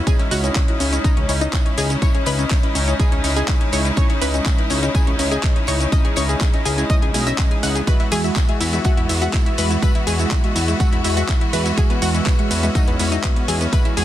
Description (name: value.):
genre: progressive house.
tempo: 123 BPM.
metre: 4/4.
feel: straight.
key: unclear.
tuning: A4 = 440 Hz.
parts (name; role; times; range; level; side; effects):
bright studio string section; sustained chords; 0.0-14.0 s; E3 to F#4; -26 LUFS; equal; sidechain pumping.
analog pluck; arpeggios; 0.0-14.0 s; B3 to F#5; -25 LUFS; left 2 dB; chorus, sidechain pumping, ping-pong delay.
deep mellow chord stab; stabs; 0.1-14.0 s; G#3 to E5; -26 LUFS; left 1 dB; chorus, sidechain pumping, ping-pong delay.
electronic kick drum; drums; 0.1-13.8 s; none; -18 LUFS; equal; studio reverb.
modern studio drum kit; drums; 0.1-14.0 s; hi-hat, snare drum, tambourine; -37 LUFS; equal; none.
pop drum kit; drums; 0.1-14.0 s; cabasa, handclaps, hi-hat, ride cymbal; -26 LUFS; right 1 dB; studio reverb, soft clipping on snare.
fat analog bass; bass; 0.3-14.0 s; B1 to E2; -21 LUFS; equal; sidechain pumping.
room: small room ambience.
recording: dense, heavily limited modern master.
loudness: -16 LUFS.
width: side -13 dB against mid.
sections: 0.0-14.0 A section.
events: none.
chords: 0.1 C#madd9; 7.9 Eadd9.